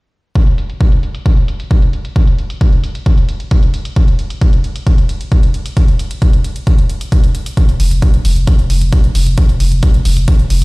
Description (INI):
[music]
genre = driving peak-time techno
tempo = 133 BPM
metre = 4/4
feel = straight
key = unclear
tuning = A4 = 440 Hz
[part]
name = electronic hi-hat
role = drums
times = 0.4-10.6 s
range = none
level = -28 LUFS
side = right 1 dB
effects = overdrive, low-pass filter on hats, studio ambience
[part]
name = electronic kick drum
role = drums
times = 0.4-10.4 s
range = none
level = -11 LUFS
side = equal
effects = studio ambience
[part]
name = saturated sub bass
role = bass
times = 7.7-10.6 s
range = F1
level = -13 LUFS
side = equal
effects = overdrive, sidechain pumping, low-pass filter
[sound]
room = little or no reverb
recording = played on a big sound system in a bare room, stone room reverb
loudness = -10 LUFS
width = side -24 dB against mid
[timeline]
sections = 0.4-10.6 A section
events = none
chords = none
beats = | 0.35 0.81 1.26 1.71 | 2.16 2.61 3.06 3.51 | 3.96 4.42 4.87 5.32 | 5.77 6.22 6.67 7.12 | 7.57 8.02 8.47 8.93 | 9.38 9.83 10.28